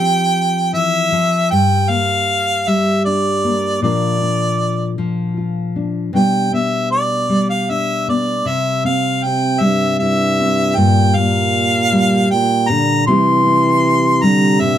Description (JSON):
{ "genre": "folk", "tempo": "78 BPM", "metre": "3/4", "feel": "straight", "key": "G dorian", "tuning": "A4 = 440 Hz", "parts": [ { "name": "warm harmonica", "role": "melody", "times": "0.0-14.8 s", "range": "D5 to C6", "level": "-16 LUFS", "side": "equal", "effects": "none" }, { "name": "nylon-string guitar", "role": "accompaniment", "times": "0.0-14.8 s", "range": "G2 to B4", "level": "-17 LUFS", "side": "left 1 dB", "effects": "none" }, { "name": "mellow French horn", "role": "second line", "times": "9.2-14.8 s", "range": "G2 to E3", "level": "-19 LUFS", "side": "right 2 dB", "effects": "none" } ], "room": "little or no reverb", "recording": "close, detailed microphones", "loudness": "-13 LUFS", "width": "side -10 dB against mid", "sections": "0.0-1.5 A section; 1.5-14.8 B section", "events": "none", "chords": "0.0 Fsus2; 1.5 Gm; 3.8 Bb; 6.1 G/B; 8.5 C; 10.8 Gm; 13.1 C", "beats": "0.73 | 1.51 2.28 3.06 | 3.83 4.60 5.37 | 6.15 6.92 7.69 | 8.46 9.23 10.00 | 10.77 11.54 12.31 | 13.07 13.84 14.61" }